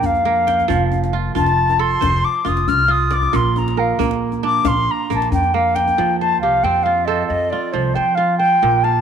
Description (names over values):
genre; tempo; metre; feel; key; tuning
west african traditional, West African string and xylophone music; 91 BPM (dotted quarters); 12/8; straight; F mixolydian; A4 = 440 Hz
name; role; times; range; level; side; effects
concert flute; melody; 0.0-9.0 s; C5 to F6; -17 LUFS; left 1 dB; none
kora; arpeggios; 0.0-9.0 s; Bb2 to G5; -22 LUFS; right 10 dB; none
upright bass; bass; 0.0-9.0 s; F1 to F3; -22 LUFS; left 1 dB; none
djembe; percussion; 0.0-6.0 s; none; -25 LUFS; left 8 dB; none
room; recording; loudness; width
moderate spring reverb, RT60 2.5 s; 1960s-style stereo with parts hard left and right; -15 LUFS; side -8 dB against mid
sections
0.0-6.0 A section; 6.0-9.0 B section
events
flute solo 0.0-6.0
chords
0.0 Bb; 0.7 F; 3.3 Bb; 6.0 F